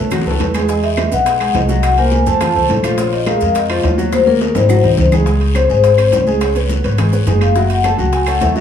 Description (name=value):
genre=Afro-Cuban jazz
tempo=210 BPM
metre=4/4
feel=straight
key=Db major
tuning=A4 = 439 Hz
part: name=vibraphone with soft mallets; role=melody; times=0.0-8.6 s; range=A4 to A5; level=-16 LUFS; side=left 4 dB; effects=none
part: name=clear concert grand piano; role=accompaniment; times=0.0-8.6 s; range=F3 to Ab5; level=-18 LUFS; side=right 1 dB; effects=none
part: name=upright bass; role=bass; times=0.0-8.6 s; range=Gb1 to F2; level=-16 LUFS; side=equal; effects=none
part: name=bongos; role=percussion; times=0.1-8.6 s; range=none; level=-27 LUFS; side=left 8 dB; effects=none
part: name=claves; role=percussion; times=0.1-8.4 s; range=none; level=-31 LUFS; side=left 3 dB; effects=none
part: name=congas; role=percussion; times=0.1-8.6 s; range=none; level=-23 LUFS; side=left 1 dB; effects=none
part: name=guiro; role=percussion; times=0.1-8.6 s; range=none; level=-32 LUFS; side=left 8 dB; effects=none
part: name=maracas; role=percussion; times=0.1-8.6 s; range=none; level=-37 LUFS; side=right 9 dB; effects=none
part: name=timbales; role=percussion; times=0.1-8.6 s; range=none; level=-25 LUFS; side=right 7 dB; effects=none
room=light reverb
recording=small room ambience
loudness=-11 LUFS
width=side -8 dB against mid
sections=0.0-5.3 A section; 5.3-8.6 B section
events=drum fill 0.1-0.7, 4.1-5.3; vibraphone solo 5.3-8.6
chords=0.1 Cbsus2; 0.7 Emaj7; 1.8 Ab13/C; 2.4 F; 3.0 Bbm7; 4.1 Ebm7; 4.7 Ab7; 5.3 Db5; 7.6 Gbm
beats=0.12 0.40 | 0.69 0.98 1.26 1.55 | 1.83 2.12 2.41 2.69 | 2.98 3.27 3.55 3.84 | 4.12 4.41 4.70 4.98 | 5.27 5.55 5.84 6.13 | 6.41 6.70 6.98 7.27 | 7.55 7.84 8.13 8.41